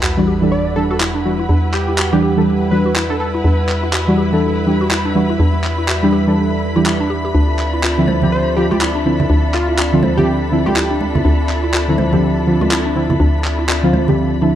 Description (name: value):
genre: deep house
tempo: 123 BPM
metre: 4/4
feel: swing 60% on 16ths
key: E phrygian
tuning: A4 = 440 Hz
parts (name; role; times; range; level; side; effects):
- hollow soft pad; sustained chords; 0.0-14.6 s; G3 to F#5; -25 LUFS; equal; chorus
- mallet-like synth pluck; arpeggios; 0.0-14.5 s; D4 to C5; -24 LUFS; left 1 dB; chorus, analog delay
- hollow knocking FM bass; bass; 0.0-14.6 s; D2 to E2; -19 LUFS; equal; tube saturation
- electronic handclaps; drums; 0.0-13.8 s; none; -22 LUFS; equal; none
- sub drop; sound effects; 0.0-1.5 s; none; -26 LUFS; equal; none
- dark symphonic string section; texture; 0.0-14.6 s; D4 to B4; -27 LUFS; left 2 dB; none
- rich chamber violin section; texture; 0.0-14.6 s; B5; -28 LUFS; left 1 dB; none
- deep mellow chord stab; stabs; 0.2-14.6 s; D3 to A4; -16 LUFS; right 1 dB; chorus, analog delay
- plucky unison lead; melody; 0.5-3.3, 8.3-11.0 s; F4 to D5; -22 LUFS; right 1 dB; analog delay
- congas; percussion; 8.1-14.2 s; none; -21 LUFS; right 3 dB; none
room: moderate plate reverb, RT60 1.4 s, digital ambience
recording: dark, warm production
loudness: -13 LUFS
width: side -11 dB against mid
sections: 0.0-14.6 A section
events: impact 0.0-1.5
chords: 0.0 Em9; 7.3 Dm9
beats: 0.03 0.52 1.00 | 1.49 1.98 2.47 2.96 | 3.44 3.93 4.42 4.91 | 5.39 5.88 6.37 6.86 | 7.35 7.83 8.32 8.81 | 9.30 9.79 10.27 10.76 | 11.25 11.74 12.22 12.71 | 13.20 13.69 14.18